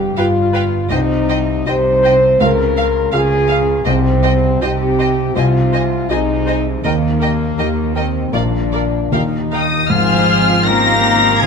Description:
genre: cinematic.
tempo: 80 BPM.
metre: 4/4.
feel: uneven beats, rubato.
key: Ab major.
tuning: A4 = 438 Hz.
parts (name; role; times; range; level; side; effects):
felt-muted upright piano; accompaniment; 0.0-11.5 s; Bb1 to Bb4; -20 LUFS; right 1 dB; none.
warm French horn section; sustained chords; 0.0-11.5 s; Eb3 to C5; -17 LUFS; left 2 dB; none.
concert harp; arpeggios; 0.0-11.5 s; G2 to F5; -25 LUFS; left 9 dB; none.
dark symphonic double bass section; bass; 0.0-11.5 s; G1 to Eb2; -22 LUFS; right 5 dB; none.
warm studio cello section; bass; 0.0-11.5 s; G2 to Bb3; -22 LUFS; right 3 dB; none.
warm chamber violin section; melody; 0.2-11.5 s; F5 to Bb6; -20 LUFS; left 4 dB; none.
rich studio violin section; second line; 0.2-11.5 s; F4 to F5; -24 LUFS; equal; none.
warm studio viola section; accompaniment; 0.2-11.5 s; Eb3 to F5; -26 LUFS; right 2 dB; none.
clear oboe; second line; 9.5-11.5 s; Eb4 to Bb4; -23 LUFS; right 2 dB; none.
flute section; second line; 9.5-11.5 s; Eb5 to Bb5; -20 LUFS; left 5 dB; none.
room: moderate scoring stage reverb, RT60 2.1 s.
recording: close, detailed microphones.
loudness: -12 LUFS.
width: side -6 dB against mid.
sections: 0.0-9.9 A section; 9.9-11.5 B section.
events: none.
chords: 0.0 G7; 0.9 Cm; 2.4 Bbm7/Db; 3.9 Cm; 5.4 Ab/C; 6.8 Eb; 8.3 Bb; 9.1 Ebadd9; 9.9 Ab6.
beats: 0.18 | 0.90 1.66 2.41 3.13 | 3.86 4.62 5.36 6.10 | 6.84 7.58 8.33 9.12 | 9.90 10.67 11.42.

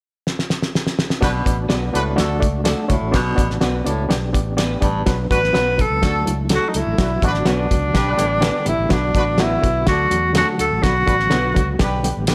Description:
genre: uptempo 1960s-style soul.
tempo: 125 BPM.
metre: 4/4.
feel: straight.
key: B minor.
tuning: A4 = 440 Hz.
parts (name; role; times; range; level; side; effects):
cloth-damped thuddy drum kit; drums; 0.3-12.3 s; hi-hat, kick drum, snare drum; -23 LUFS; equal; none.
warm horn section; second line; 1.2-12.2 s; D4 to D5; -29 LUFS; equal; none.
overdriven reed electric piano; accompaniment; 1.2-12.3 s; D3 to D5; -26 LUFS; equal; tremolo.
raspy baritone saxophone; riff; 1.2-5.0 s; G2 to B2; -28 LUFS; equal; none.
fingered electric bass; bass; 1.2-12.3 s; A1 to E2; -26 LUFS; equal; none.
electric guitar through a small old amp; stabs; 1.7-12.3 s; A3 to B4; -30 LUFS; equal; spring reverb, slapback echo.
breathy tenor saxophone; melody; 5.3-11.8 s; D4 to B4; -22 LUFS; equal; slapback echo.
room: light reverb.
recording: none.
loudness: -19 LUFS.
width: mono.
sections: 0.0-1.2 A section; 1.2-5.1 B section; 5.1-12.3 C section.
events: drum fill 0.3-1.2.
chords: 0.0 N.C.; 1.2 Bm; 2.2 D; 3.1 Bm; 4.1 G; 5.1 Bm; 6.0 D; 7.0 Bm; 8.0 G; 8.9 Bm; 9.9 D; 10.8 Bm; 11.8 G.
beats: 0.25 0.73 | 1.22 1.70 2.18 2.66 | 3.14 3.62 4.10 4.58 | 5.07 5.55 6.03 6.51 | 6.99 7.47 7.95 8.43 | 8.91 9.40 9.88 10.36 | 10.84 11.32 11.80 12.28.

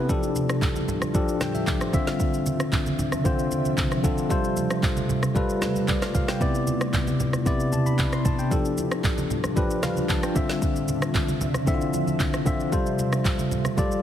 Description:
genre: amapiano.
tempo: 114 BPM.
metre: 4/4.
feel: straight.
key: unclear.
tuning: A4 = 440 Hz.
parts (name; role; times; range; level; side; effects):
bell-like tine electric piano; accompaniment; 0.0-14.0 s; C3 to C6; -25 LUFS; left 2 dB; none.
ethereal airy pad; sustained chords; 0.0-14.0 s; A2 to E5; -29 LUFS; right 1 dB; ensemble chorus, built-in reverb, sidechain pumping.
deep house drum kit; drums; 0.1-14.0 s; handclaps, kick drum, rim click, shaker, snare drum; -26 LUFS; right 1 dB; none.
congas; percussion; 0.4-13.9 s; none; -32 LUFS; right 4 dB; none.
room: light reverb.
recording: heavily compressed radio sound, multiband compression.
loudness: -22 LUFS.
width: side -10 dB against mid.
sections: 0.0-14.0 A section.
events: none.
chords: 0.1 F69; 1.9 Dm9; 4.3 G9sus4; 6.4 Cmaj9; 8.5 F69; 10.4 Dm9; 12.7 G9sus4.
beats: | 0.09 0.62 1.15 1.67 | 2.20 2.73 3.25 3.78 | 4.30 4.83 5.36 5.88 | 6.41 6.94 7.46 7.99 | 8.52 9.04 9.57 10.09 | 10.62 11.15 11.67 12.20 | 12.72 13.25 13.78.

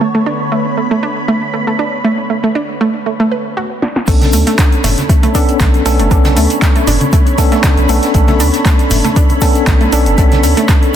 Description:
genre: deep house.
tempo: 118 BPM.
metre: 4/4.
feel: swing 54% on 16ths.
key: B minor.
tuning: A4 = 442 Hz.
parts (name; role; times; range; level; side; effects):
soft string machine; sustained chords; 0.0-11.0 s; D3 to B5; -21 LUFS; equal; phaser, ensemble chorus, sidechain pumping.
analog pluck; arpeggios; 0.0-10.7 s; A3 to B4; -17 LUFS; right 3 dB; chorus, sidechain pumping, analog delay.
tine electric piano; stabs; 0.0-11.0 s; B3 to A4; -16 LUFS; left 1 dB; overdrive, medium stereo tremolo, vintage 12-bit sampler grit, sidechain pumping, analog delay.
punchy analog drum machine; drums; 0.0-10.9 s; crash cymbal, handclaps, hi-hat, snare drum; -20 LUFS; equal; low-pass filter on hats, low-pass filter on cymbals, low-pass filter on snare.
round analog bass; bass; 4.1-10.5 s; F#1 to D2; -14 LUFS; equal; tube saturation, sidechain pumping.
electronic kick drum; drums; 4.1-10.8 s; none; -11 LUFS; equal; overdrive.
vintage brush drum kit; drums; 4.1-10.8 s; hi-hat, snare drum; -28 LUFS; right 2 dB; sidechain pumping on hats, high-pass filter on hats, soft clipping on snare, high-pass filter on snare, high-pass filter on room.
egg shaker; percussion; 4.1-10.9 s; none; -28 LUFS; left 5 dB; none.
congas; percussion; 4.2-10.4 s; none; -22 LUFS; right 2 dB; none.
room: light reverb, small room ambience.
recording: dense, heavily limited modern master.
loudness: -10 LUFS.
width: side -10 dB against mid.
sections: 0.0-4.1 A section; 4.1-11.0 B section.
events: drum fill 3.8; drop 4.1-11.0.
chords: 0.0 Bm9; 3.8 N.C.; 4.1 Bm9.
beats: | 0.01 0.52 1.03 1.53 | 2.04 2.55 3.06 3.57 | 4.08 4.59 5.09 5.60 | 6.11 6.62 7.13 7.64 | 8.15 8.65 9.16 9.67 | 10.18 10.69.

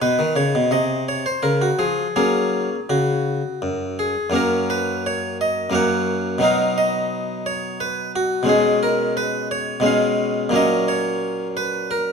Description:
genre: classical, baroque-style suite movement for harpsichord.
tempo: 82-90 BPM.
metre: 3/4.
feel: rubato.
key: F# major.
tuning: A4 = 444 Hz.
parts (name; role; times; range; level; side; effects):
harpsichord; solo; 0.0-12.1 s; F#2 to F#5; -18 LUFS; equal; none.
room: moderate recital hall reverb, RT60 1.6 s.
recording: dark, warm production.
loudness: -18 LUFS.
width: side -6 dB against mid.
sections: 0.0-4.4 A section; 4.4-12.1 B section.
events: none.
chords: 0.0 B; 0.7 N.C.; 1.4 C#; 2.2 F#; 6.4 B; 8.5 C#7/B; 10.6 F#/A#.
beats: | 0.03 0.73 1.44 | 2.17 2.90 3.62 | 4.35 5.06 5.75 | 6.43 7.12 7.81 | 8.50 9.18 9.86 | 10.55 11.23 11.90.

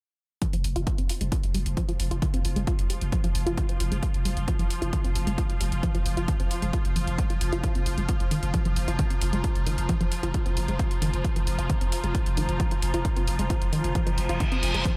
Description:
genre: driving peak-time techno.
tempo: 133 BPM.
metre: 4/4.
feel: straight.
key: unclear.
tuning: A4 = 439 Hz.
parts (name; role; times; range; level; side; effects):
tight sequenced synth; riff; 0.4-14.9 s; Eb3 to F4; -35 LUFS; equal; chorus, tube saturation, sidechain pumping, tape echo.
swarming drone; drone; 1.3-15.0 s; F3 to F4; -38 LUFS; equal; built-in reverb, lush chorus, sidechain pumping.
electronic hi-hat; drums; 0.4-14.9 s; none; -39 LUFS; equal; none.
electronic kick drum; drums; 0.4-14.9 s; none; -29 LUFS; equal; none.
airy breathy pad; texture; 0.4-15.0 s; F4 to Bb5; -41 LUFS; equal; chorus, sidechain pumping.
growling 808-style bass; bass; 0.5-14.9 s; F1; -33 LUFS; equal; tube saturation, sidechain pumping, low-pass filter.
reverse cymbal; sound effects; 14.1-14.9 s; none; -32 LUFS; equal; none.
room: light reverb, digital ambience.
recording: none.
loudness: -26 LUFS.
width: mono.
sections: 0.4-15.0 A section.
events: fade-in on analog synth pad 0.4-15.0; reverse cymbal 14.1-14.9.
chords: 0.4 F5.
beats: | 0.42 0.87 1.32 1.77 | 2.22 2.67 3.12 3.58 | 4.03 4.48 4.93 5.38 | 5.83 6.28 6.73 7.18 | 7.64 8.09 8.54 8.99 | 9.44 9.89 10.34 10.79 | 11.24 11.70 12.15 12.60 | 13.05 13.50 13.95 14.40 | 14.85.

